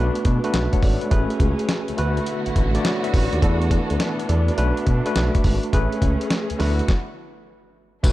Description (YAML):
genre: R&B, new jack swing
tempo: 104 BPM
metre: 4/4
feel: swing 67% on 16ths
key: unclear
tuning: A4 = 437 Hz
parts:
  - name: tine electric piano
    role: accompaniment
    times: 0.0-8.1 s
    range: A3 to A5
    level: -24 LUFS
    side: left 1 dB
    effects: medium stereo tremolo
  - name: warm studio string section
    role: sustained chords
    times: 0.0-8.1 s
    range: D3 to A4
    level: -29 LUFS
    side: right 1 dB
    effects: none
  - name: smooth synth bass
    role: bass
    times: 0.0-8.1 s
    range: G#1 to B2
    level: -22 LUFS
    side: equal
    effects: none
  - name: dusty soul sampler-style drum kit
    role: drums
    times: 0.2-8.1 s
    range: crash cymbal, hi-hat, kick drum, snare drum, tambourine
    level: -21 LUFS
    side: equal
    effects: none
room: digital ambience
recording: dark, warm production, faint mains hum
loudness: -18 LUFS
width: side -16 dB against mid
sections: 0.0-8.0 A section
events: stop 6.9-8.0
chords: 0.0 Bm7; 1.1 Amaj9; 2.0 D6; 3.4 E7sus4; 4.6 Bm7; 5.7 Amaj9; 6.6 D6; 7.5 N.C.